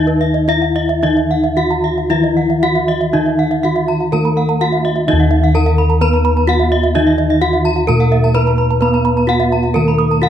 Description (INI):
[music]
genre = Balinese gamelan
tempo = 109-129 BPM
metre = 4/4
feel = straight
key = Eb pelog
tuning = A4 = 440 Hz
[part]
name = gamelan-type bronze metallophone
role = melody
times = 0.0-10.3 s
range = Eb4 to Cb5-40c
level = -17 LUFS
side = equal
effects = none
[part]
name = gamelan-type bronze metallophone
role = arpeggios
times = 0.0-10.3 s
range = Eb5 to Cb6-40c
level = -21 LUFS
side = left 4 dB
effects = none
[part]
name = gamelan-type bossed gongs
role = bass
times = 0.0-10.3 s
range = Eb2 to Cb5-40c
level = -16 LUFS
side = equal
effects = none
[part]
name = gamelan-type bronze metallophone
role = arpeggios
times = 0.1-10.1 s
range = Cb5-40c to Eb6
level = -22 LUFS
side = right 7 dB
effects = none
[part]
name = gamelan-type bronze metallophone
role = accompaniment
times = 1.0-10.3 s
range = Eb3 to Cb4-40c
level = -21 LUFS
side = right 2 dB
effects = none
[sound]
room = moderate recital hall reverb, RT60 1.6 s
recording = close, detailed microphones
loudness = -12 LUFS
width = side -10 dB against mid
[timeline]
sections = 0.0-5.1 A section; 5.1-10.3 B section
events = none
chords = none